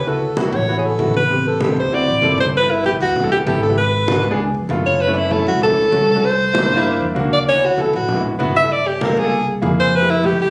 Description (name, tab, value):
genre	Afro-Cuban jazz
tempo	195 BPM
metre	4/4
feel	straight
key	D major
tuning	A4 = 440 Hz
part	warm alto saxophone	melody	0.0-10.5 s	D4 to E5	-19 LUFS	equal	none
part	upright bass	bass	0.0-10.5 s	G1 to G2	-26 LUFS	equal	none
part	warm grand piano	accompaniment	0.1-10.5 s	A3 to B4	-24 LUFS	equal	none
part	congas	percussion	0.1-10.5 s	none	-27 LUFS	equal	none
room	moderate large studio reverb, RT60 0.9 s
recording	recorded on a phone in the room, club reverb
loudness	-17 LUFS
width	mono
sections	0.0-2.5 A section; 2.5-10.5 B section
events	none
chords	0.1 D69; 1.3 Am7; 1.9 D7; 2.5 G69; 3.8 G#m7b5; 4.4 C#7b13; 5.0 F#m7; 6.2 C9; 7.5 D6; 8.7 Gm9; 9.3 Caug7; 9.9 Fmaj7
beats	| 0.07 0.38 0.69 1.00 | 1.30 1.61 1.92 2.23 | 2.54 2.85 3.16 3.46 | 3.77 4.08 4.39 4.70 | 5.01 5.31 5.62 5.93 | 6.24 6.55 6.86 7.16 | 7.47 7.78 8.09 8.40 | 8.70 9.01 9.32 9.63 | 9.94 10.24